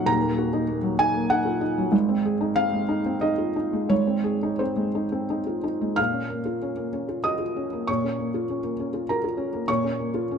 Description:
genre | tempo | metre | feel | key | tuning
neoclassical minimalist piano | 85-102 BPM | 3/4 | rubato | Bb minor | A4 = 440 Hz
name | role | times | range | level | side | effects
felt-muted upright piano | solo | 0.0-10.4 s | Eb1 to F6 | -22 LUFS | equal | none
room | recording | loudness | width
light reverb | none | -22 LUFS | side -7 dB against mid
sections
0.0-6.0 A section; 6.0-10.4 B section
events
none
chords
0.0 Ebm; 1.9 Ab; 6.0 Bbm

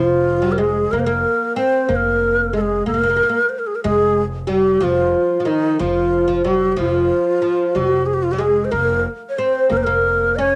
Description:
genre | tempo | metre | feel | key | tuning
persian | 61 BPM (dotted quarters) | 6/8 | straight | F dastgah shur | A4 = 441 Hz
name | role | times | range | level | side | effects
breathy ney | melody | 0.0-10.6 s | Eb4 to Eb5 | -20 LUFS | equal | cassette tape
oud | second line | 0.0-10.6 s | Eb3 to Db4 | -23 LUFS | equal | cassette tape
upright bass | bass | 0.0-10.6 s | F1 | -27 LUFS | equal | none
room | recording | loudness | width
light reverb, small room ambience | home recording on cassette | -18 LUFS | mono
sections
0.0-10.6 A section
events
none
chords
none

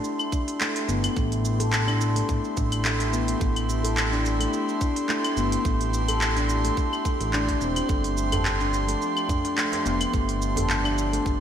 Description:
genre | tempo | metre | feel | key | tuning
organic downtempo | 107 BPM | 4/4 | swing 55% on 16ths | A minor | A4 = 437 Hz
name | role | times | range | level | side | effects
airy breathy pad | sustained chords | 0.0-11.4 s | F3 to C6 | -29 LUFS | right 2 dB | chorus, sidechain pumping
handpan | arpeggios | 0.0-11.4 s | A3 to A4 | -28 LUFS | left 3 dB | ping-pong delay
organic electronic drum kit | drums | 0.0-11.4 s | cabasa, claves, handclaps, hi-hat | -29 LUFS | equal | gated reverb
electronic kick drum | drums | 0.3-11.4 s | none | -27 LUFS | equal | none
smooth synth bass | bass | 0.9-11.4 s | E1 to A1 | -27 LUFS | equal | sidechain pumping
djembe | percussion | 8.3-10.7 s | none | -32 LUFS | right 2 dB | none
room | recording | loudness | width
moderate lush hall reverb, RT60 2.0 s | bright 1980s-style digital production | -22 LUFS | side -9 dB against mid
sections
0.0-11.4 A section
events
none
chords
0.0 Am7; 7.9 G7sus4

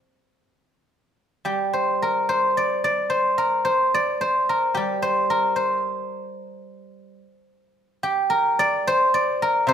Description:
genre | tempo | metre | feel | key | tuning
chinese traditional, Chinese solo plucked strings | 73 BPM | 4/4 | rubato | G yu mode | A4 = 440 Hz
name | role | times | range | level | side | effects
guzheng | solo | 0.0-9.7 s | C3 to G5 | -19 LUFS | equal | none
room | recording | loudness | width
moderate recital hall reverb, RT60 1.4 s | minimal, uncompressed stereo recording | -19 LUFS | side -8 dB against mid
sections
0.0-1.5 A section; 1.5-9.7 B section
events
none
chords
none

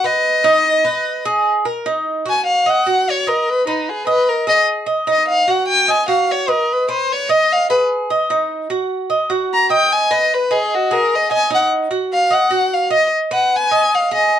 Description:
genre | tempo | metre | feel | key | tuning
latin | 149 BPM | 4/4 | straight | Eb minor | A4 = 445 Hz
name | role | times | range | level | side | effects
warm violin | melody | 0.0-14.3 s | Eb4 to Bb5 | -15 LUFS | left 1 dB | none
Cuban tres | arpeggios | 0.0-14.4 s | Eb4 to Eb5 | -18 LUFS | right 2 dB | none
room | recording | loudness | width
moderate small room reverb, RT60 0.5 s | dark, warm production | -14 LUFS | side -10 dB against mid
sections
0.0-1.9 A section; 1.9-14.4 B section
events
violin solo 1.9-14.4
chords
0.2 Abm; 1.9 Ebm; 3.5 Abm; 5.1 Ebm; 6.7 Abm; 8.3 Ebm; 9.9 Abm; 11.5 Ebm; 13.1 Abm

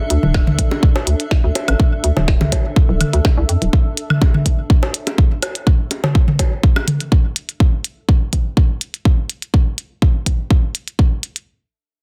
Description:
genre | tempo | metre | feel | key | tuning
minimal techno | 124 BPM | 4/4 | straight | unclear | A4 = 441 Hz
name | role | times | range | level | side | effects
granular cloud pad | texture | 0.0-3.7 s | D4 to E5 | -30 LUFS | equal | built-in reverb, sidechain pumping
hollow knocking FM bass | bass | 0.1-3.7 s | D1 to F2 | -19 LUFS | equal | sidechain pumping
minimal click drum kit | drums | 0.1-11.5 s | hi-hat, snare drum | -24 LUFS | equal | soft clipping on snare
electronic toms, woodblock and bongos | percussion | 0.2-7.0 s | none | -22 LUFS | equal | digital delay
electronic kick drum | drums | 0.3-11.1 s | none | -16 LUFS | equal | none
room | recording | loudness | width
little or no reverb | dense, heavily limited modern master | -16 LUFS | mono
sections
0.0-11.5 A section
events
none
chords
0.0 D5

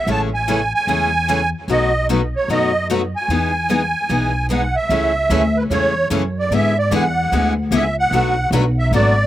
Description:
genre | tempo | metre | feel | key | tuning
acoustic string swing (jazz manouche) | 149 BPM | 4/4 | swing 62% on 8ths | E major, A major from 4.9 s | A4 = 439 Hz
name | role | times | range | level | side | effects
musette accordion | melody | 0.0-9.3 s | B4 to A5 | -18 LUFS | right 2 dB | none
picked steel-string acoustic guitar | accompaniment | 0.1-9.1 s | B2 to G#4 | -22 LUFS | left 7 dB | slapback echo
picked steel-string acoustic guitar | accompaniment | 0.1-9.1 s | B2 to B4 | -25 LUFS | right 4 dB | slapback echo
upright bass | bass | 0.1-9.3 s | G#1 to G#2 | -20 LUFS | equal | none
room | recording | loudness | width
little or no reverb | recorded outdoors, with no room sound | -15 LUFS | side -13 dB against mid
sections
0.0-4.9 A section; 4.9-9.3 B section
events
none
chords
0.1 Amaj7; 1.7 B7; 3.3 Emaj7; 4.9 Amaj7; 6.5 E7; 8.1 Bm7

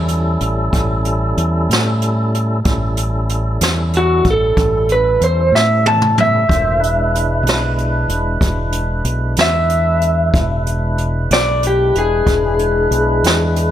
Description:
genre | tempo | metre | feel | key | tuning
slow blues | 62 BPM (dotted quarters) | 12/8 | straight | unclear | A4 = 440 Hz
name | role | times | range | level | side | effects
electric guitar through a small old amp | melody | 0.0-13.7 s | F#4 to A5 | -16 LUFS | equal | none
tonewheel organ | sustained chords | 0.0-13.7 s | D#3 to C5 | -22 LUFS | right 1 dB | slow rotary speaker
deep dub fingered electric bass | bass | 0.0-13.7 s | E1 to A2 | -18 LUFS | equal | none
jazz brush drum kit | drums | 0.1-13.7 s | hi-hat, kick drum, snare drum, toms | -19 LUFS | equal | none
room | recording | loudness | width
studio ambience | none | -13 LUFS | side -11 dB against mid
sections
0.0-13.7 A section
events
drum fill 5.5-6.5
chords
0.0 A7; 6.5 E7

